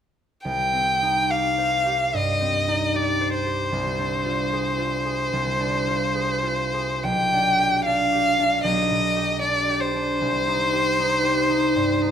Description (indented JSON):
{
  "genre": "classical, romantic duo for violin and harp",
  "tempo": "74 BPM",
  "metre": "4/4",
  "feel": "uneven beats, rubato",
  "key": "C minor",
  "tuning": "A4 = 437 Hz",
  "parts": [
    { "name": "concert harp", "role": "accompaniment", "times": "0.4-12.1 s", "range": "B1 to C5", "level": "-25 LUFS", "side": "right 1 dB", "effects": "none" },
    { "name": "clear violin", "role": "melody", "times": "0.5-12.1 s", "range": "C5 to G5", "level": "-21 LUFS", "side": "left 1 dB", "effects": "none" }
  ],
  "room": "moderate recital hall reverb, RT60 1.5 s",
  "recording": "minimal, uncompressed stereo recording",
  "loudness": "-20 LUFS",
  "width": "side -8 dB against mid",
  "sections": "0.4-12.1 A section",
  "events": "none",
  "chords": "0.4 Cm; 3.7 Dm7b5/C; 7.0 G/B; 10.2 Cm"
}